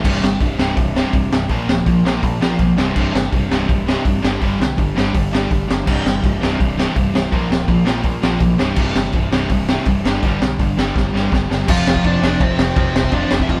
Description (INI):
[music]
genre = punk rock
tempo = 165 BPM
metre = 4/4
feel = straight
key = unclear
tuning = A4 = 440 Hz
[part]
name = crunchy overdriven guitar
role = riff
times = 0.0-13.6 s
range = C2 to Bb3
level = -26 LUFS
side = equal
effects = none
[part]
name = distorted electric guitar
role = riff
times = 0.0-13.6 s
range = C2 to Bb3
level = -26 LUFS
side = equal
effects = overdrive
[part]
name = sludgy distorted guitar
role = riff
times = 0.0-13.6 s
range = C2 to Bb3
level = -26 LUFS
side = equal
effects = none
[part]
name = growling picked electric bass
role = bass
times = 0.0-13.6 s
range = C1 to F2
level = -26 LUFS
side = equal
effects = overdrive
[part]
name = raw garage drum kit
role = drums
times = 0.0-13.6 s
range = crash cymbal, hi-hat, kick drum, ride cymbal, snare drum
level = -20 LUFS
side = equal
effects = none
[part]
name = smooth overdriven lead guitar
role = melody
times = 11.7-13.6 s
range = C4 to F5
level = -24 LUFS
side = equal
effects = none
[sound]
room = little or no reverb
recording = band playing live in one room, faint mains hum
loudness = -17 LUFS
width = mono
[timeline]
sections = 0.0-11.7 A section; 11.7-13.6 B section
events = drum fill 11.0-11.7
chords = 0.0 C5; 1.5 Bb5; 2.8 C5; 4.2 G5; 5.9 C5; 7.3 Bb5; 8.6 C5; 10.0 G5; 11.7 F5